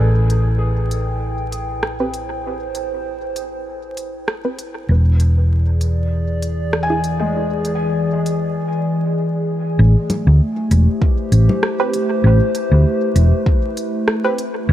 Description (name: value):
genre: ambient dub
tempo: 98 BPM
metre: 4/4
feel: swing 56% on 16ths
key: A minor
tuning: A4 = 440 Hz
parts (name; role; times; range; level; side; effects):
- warbly tape-like pad; sustained chords; 0.0-14.7 s; E3 to G5; -21 LUFS; left 1 dB; chorus, built-in reverb
- felt-muted upright piano; arpeggios; 0.0-9.8 s; G#3 to G#5; -28 LUFS; left 2 dB; low-pass filter, dub echo
- hollow-body short-scale fingered electric bass; bass; 0.0-14.7 s; E1 to D2; -14 LUFS; equal; none
- organic electronic drum kit; drums; 0.3-14.5 s; congas, hi-hat, rim click; -24 LUFS; equal; dub echo
- filtered dub chord stab; stabs; 2.0-7.0, 11.8-14.4 s; C4 to B4; -24 LUFS; right 3 dB; chorus, vintage 12-bit sampler grit, dub echo
- electronic kick drum; drums; 11.0-13.6 s; none; -15 LUFS; equal; none
room: digital ambience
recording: vinyl crackle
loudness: -15 LUFS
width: side -12 dB against mid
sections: 0.0-9.8 A section; 9.8-14.7 B section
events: none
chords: 0.0 Am9; 4.9 E7; 9.8 Am9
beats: 0.61 1.22 1.83 | 2.44 3.06 3.67 4.28 | 4.89 5.50 6.12 6.73 | 7.34 7.95 8.57 9.18 | 9.79 10.40 11.02 11.63 | 12.24 12.85 13.46 14.08 | 14.69